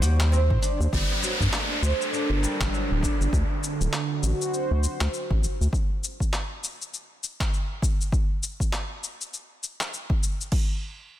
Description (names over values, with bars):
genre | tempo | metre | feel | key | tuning
organic downtempo | 100 BPM | 4/4 | swing 59% on 16ths | G harmonic minor | A4 = 440 Hz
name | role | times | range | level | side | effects
clean lap steel guitar | melody | 0.0-0.6 s | C5 | -42 LUFS | left 2 dB | digital delay
warm analog pad | sustained chords | 0.0-5.7 s | D3 to C5 | -31 LUFS | right 2 dB | chorus, sidechain pumping
oud | arpeggios | 0.0-3.3 s | F#3 to F#4 | -31 LUFS | right 3 dB | low-pass filter, digital delay
round analog bass | bass | 0.0-5.7 s | D1 to A2 | -22 LUFS | equal | sidechain pumping
dusty soul sampler-style drum kit | drums | 0.0-10.5 s | handclaps, hi-hat, shaker | -32 LUFS | left 2 dB | overdrive, studio reverb
deep house drum kit | drums | 0.5-10.7 s | crash cymbal, kick drum | -26 LUFS | equal | studio reverb
downlifter | sound effects | 0.9-5.7 s | none | -31 LUFS | equal | none
room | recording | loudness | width
light reverb, digital ambience | dense, heavily limited modern master | -23 LUFS | side -12 dB against mid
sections
0.9-10.5 A section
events
none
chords
0.0 Am7b5; 0.9 Gmadd9; 3.3 D7; 5.7 N.C.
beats
0.32 | 0.92 1.52 2.12 2.72 | 3.32 3.92 4.52 5.12 | 5.72 6.32 6.92 7.52 | 8.12 8.72 9.32 9.92 | 10.52